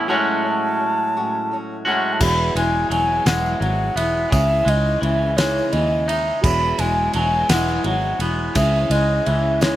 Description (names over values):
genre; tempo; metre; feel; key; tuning
folk rock and heartland rock; 57 BPM (dotted quarters); 6/8; straight; E major; A4 = 440 Hz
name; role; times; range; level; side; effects
breathy alto ocarina; melody; 0.0-9.8 s; C#5 to B5; -21 LUFS; equal; none
picked old ladder-braced acoustic guitar; accompaniment; 0.0-9.8 s; E2 to F#4; -29 LUFS; left 1 dB; none
reed electric piano; accompaniment; 0.0-9.8 s; C#4 to D#6; -32 LUFS; right 3 dB; none
twangy electric guitar; riff; 0.0-9.8 s; E2 to F#4; -24 LUFS; equal; slapback echo
rich studio string section; sustained chords; 2.2-9.8 s; C#3 to E4; -34 LUFS; equal; none
fingered electric bass; bass; 2.2-9.8 s; E1 to D#2; -22 LUFS; equal; none
damped 70s drum kit; drums; 2.2-9.8 s; crash cymbal, kick drum, ride cymbal, snare drum; -25 LUFS; equal; none
tambourine; percussion; 2.2-9.8 s; none; -36 LUFS; left 4 dB; none
room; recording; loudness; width
little or no reverb; recorded outdoors, with no room sound; -17 LUFS; side -13 dB against mid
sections
0.0-2.2 A section; 2.2-9.8 B section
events
none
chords
0.1 F#madd9/A; 2.2 Eadd9; 4.3 C#madd9; 6.4 Eadd9; 8.6 C#madd9